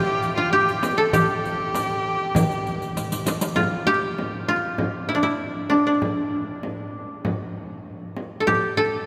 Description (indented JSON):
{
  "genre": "Arabic maqam ensemble",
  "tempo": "98 BPM",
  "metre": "4/4",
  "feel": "straight",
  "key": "unclear",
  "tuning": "A4 = 439 Hz",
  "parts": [
    { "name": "koto", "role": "melody", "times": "0.0-9.1 s", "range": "D4 to A4", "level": "-25 LUFS", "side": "equal", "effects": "none" },
    { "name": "clear violin", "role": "second line", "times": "0.0-3.2 s", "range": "F4 to A4", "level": "-29 LUFS", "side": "equal", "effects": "none" },
    { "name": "darbuka", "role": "percussion", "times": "0.2-3.6 s", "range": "none", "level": "-31 LUFS", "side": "equal", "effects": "none" },
    { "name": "riq", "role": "percussion", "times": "0.2-3.6 s", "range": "none", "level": "-36 LUFS", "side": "equal", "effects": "none" },
    { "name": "frame drum", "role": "percussion", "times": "0.8-8.6 s", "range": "none", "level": "-32 LUFS", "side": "equal", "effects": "none" }
  ],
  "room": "wet cathedral reverb, RT60 5.7 s",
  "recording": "recorded in a church or concert hall",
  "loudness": "-23 LUFS",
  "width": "mono",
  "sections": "0.0-3.6 A section; 3.6-9.1 B section",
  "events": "drum fill 3.0-3.6",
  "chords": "none",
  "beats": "0.52 | 1.13 1.74 2.35 2.96 | 3.58 4.19 4.80 5.41 | 6.02 6.63 7.25 7.86 | 8.47"
}